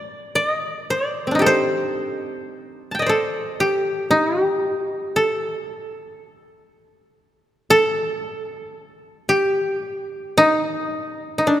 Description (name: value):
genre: japanese traditional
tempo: 57 BPM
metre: 4/4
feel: rubato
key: D in sen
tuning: A4 = 440 Hz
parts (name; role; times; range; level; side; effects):
- koto; solo; 0.0-11.6 s; C4 to A5; -19 LUFS; equal; none
room: wet church reverb, RT60 3.0 s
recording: none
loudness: -19 LUFS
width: side -12 dB against mid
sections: 0.0-11.6 A section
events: none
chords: none